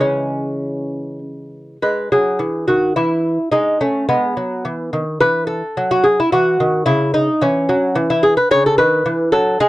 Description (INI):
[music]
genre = classical, baroque-style dance for lute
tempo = 99-113 BPM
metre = 3/4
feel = rubato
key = E major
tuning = A4 = 439 Hz
[part]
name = lute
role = solo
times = 0.0-9.7 s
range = C#3 to C#5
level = -14 LUFS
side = equal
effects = none
[sound]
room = little or no reverb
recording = dry, close 1970s-style studio recording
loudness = -14 LUFS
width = side -17 dB against mid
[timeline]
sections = 0.0-1.8 A section; 1.8-9.7 A section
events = none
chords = 0.0 C#m; 1.8 E; 3.5 E/G#; 5.2 F#m13; 6.9 C#madd9; 8.5 C#m